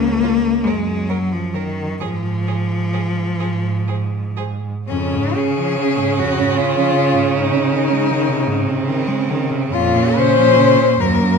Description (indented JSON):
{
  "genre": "classical, lyrical piece for cello ensemble",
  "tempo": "38-53 BPM (dotted quarters)",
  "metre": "6/8",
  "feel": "rubato",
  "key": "Db major",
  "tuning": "A4 = 441 Hz",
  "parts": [
    { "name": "clear cello", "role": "accompaniment", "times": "0.0-11.4 s", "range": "Eb2 to Bb3", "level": "-21 LUFS", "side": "left 3 dB", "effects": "none" },
    { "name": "rich cello", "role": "bass", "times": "0.0-11.4 s", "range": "Db2 to Db3", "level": "-20 LUFS", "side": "right 3 dB", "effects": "none" },
    { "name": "rich cello", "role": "melody", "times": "0.2-11.4 s", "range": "Db4 to Db5", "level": "-18 LUFS", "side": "left 8 dB", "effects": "none" },
    { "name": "dark cello", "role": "second line", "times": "0.2-11.4 s", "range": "Bb3 to Bb4", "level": "-22 LUFS", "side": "right 9 dB", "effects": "none" }
  ],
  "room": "moderate recital hall reverb, RT60 1.4 s",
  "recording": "none",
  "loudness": "-15 LUFS",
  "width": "side -5 dB against mid",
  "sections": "0.0-4.9 A section; 4.9-11.4 B section",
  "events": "none",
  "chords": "0.0 N.C.; 2.0 Db/Ab (rootless); 4.9 Db/F; 7.3 Ab; 9.7 Bbm/F"
}